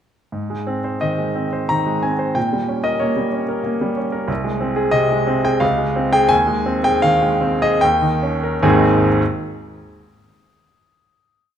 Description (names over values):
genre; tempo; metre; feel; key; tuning
classical, romantic character piece for solo piano; 70-95 BPM; 3/4; rubato; Ab major; A4 = 441 Hz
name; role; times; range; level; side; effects
bright grand piano; solo; 0.3-9.2 s; Ab1 to Bb5; -16 LUFS; equal; none
room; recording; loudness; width
wet recital hall reverb, RT60 1.6 s; dark, warm production; -16 LUFS; side -9 dB against mid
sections
0.3-8.6 A section; 8.6-11.0 final chord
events
slowing down 3.3-8.6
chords
0.3 Ab; 2.4 Gdim/Bb; 4.3 Ab/C; 5.6 Dbmaj7; 6.3 Ab/Eb; 7.8 Eb7; 8.6 Ab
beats
| 0.33 1.02 1.70 | 2.36 3.01 3.66 | 4.30 4.95 5.63 | 6.32 7.04 7.82 | 8.64